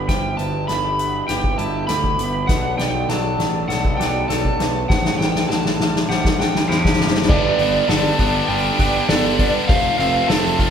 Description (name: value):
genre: post-rock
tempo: 100 BPM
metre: 4/4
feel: straight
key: G major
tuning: A4 = 444 Hz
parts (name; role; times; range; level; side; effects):
- overdriven slide guitar; melody; 0.0-10.7 s; C5 to B5; -22 LUFS; right 1 dB; none
- pedal harmonium; sustained chords; 0.0-10.7 s; B2 to A4; -29 LUFS; right 1 dB; none
- felt-muted upright piano; arpeggios; 0.0-10.7 s; A4 to B5; -31 LUFS; right 4 dB; none
- twangy electric guitar; arpeggios; 0.0-10.7 s; A2 to A4; -29 LUFS; left 4 dB; none
- fuzz picked electric bass; bass; 0.0-10.7 s; F1 to E2; -24 LUFS; equal; overdrive
- soft-mallet drum kit; drums; 0.1-10.7 s; crash cymbal, hi-hat, kick drum, snare drum; -20 LUFS; left 1 dB; none
- distorted electric guitar; riff; 7.3-10.7 s; F2 to D4; -21 LUFS; equal; overdrive
room: wet concert hall reverb, RT60 2.0 s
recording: recorded in a church or concert hall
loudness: -16 LUFS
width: side -8 dB against mid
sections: 0.0-7.3 A section; 7.3-10.7 B section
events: build-up 0.0-7.3; drum fill 0.0-7.3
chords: 0.1 Em/G; 2.5 Bm7; 4.9 Dsus4/A; 7.3 Gadd9; 9.7 F